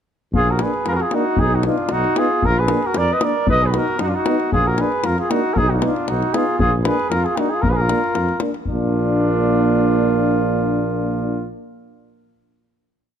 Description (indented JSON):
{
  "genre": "balkan folk, Balkan brass band",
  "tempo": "115 BPM",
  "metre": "2/4",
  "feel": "swing 54% on 16ths",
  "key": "Bb phrygian dominant",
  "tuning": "A4 = 442 Hz",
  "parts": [
    { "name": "warm flugelhorn", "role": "second line", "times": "0.3-11.5 s", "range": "D4 to Cb5", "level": "-24 LUFS", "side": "right 3 dB", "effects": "none" },
    { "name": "mellow tuba", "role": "bass", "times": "0.3-11.5 s", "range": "Bb1 to F#2", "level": "-22 LUFS", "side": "equal", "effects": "none" },
    { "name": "davul", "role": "percussion", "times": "0.3-8.9 s", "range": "none", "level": "-24 LUFS", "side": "left 2 dB", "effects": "none" },
    { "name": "dark trumpet", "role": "melody", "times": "0.4-11.5 s", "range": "F4 to Eb5", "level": "-22 LUFS", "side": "left 1 dB", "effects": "none" },
    { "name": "clear euphonium", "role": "accompaniment", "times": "0.6-11.5 s", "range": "D4 to D#4", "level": "-26 LUFS", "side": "left 8 dB", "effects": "none" },
    { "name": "mellow euphonium", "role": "accompaniment", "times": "0.6-11.5 s", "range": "Bb3 to B3", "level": "-25 LUFS", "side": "right 9 dB", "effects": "none" }
  ],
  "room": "light reverb",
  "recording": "close, detailed microphones",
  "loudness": "-16 LUFS",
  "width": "side -8 dB against mid",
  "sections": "0.3-8.7 A section; 8.7-10.8 final chord",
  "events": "none",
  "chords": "0.3 Bb; 1.4 B; 2.4 Bb; 3.5 B; 4.5 Bb; 5.6 B; 6.6 Bb",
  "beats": "| 0.34 0.86 | 1.39 1.91 | 2.43 2.96 | 3.48 4.00 | 4.52 5.04 | 5.55 6.07 | 6.59 7.11 | 7.63 8.15 | 8.67 9.19 | 9.71 10.24"
}